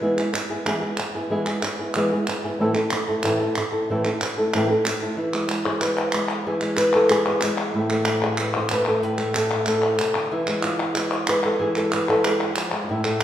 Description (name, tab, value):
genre	flamenco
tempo	186 BPM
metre	4/4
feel	straight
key	unclear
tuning	A4 = 440 Hz
part	flamenco guitar	melody	0.0-13.2 s	A2 to C5	-21 LUFS	equal	none
part	palmas hand claps	percussion	0.2-13.2 s	none	-26 LUFS	equal	none
room	wet recital hall reverb, RT60 1.8 s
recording	recorded in a church or concert hall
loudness	-20 LUFS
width	side -11 dB against mid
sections	0.0-5.2 A section; 5.2-13.2 B section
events	none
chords	0.0 E; 2.6 Am; 5.2 E; 7.7 Am; 10.3 E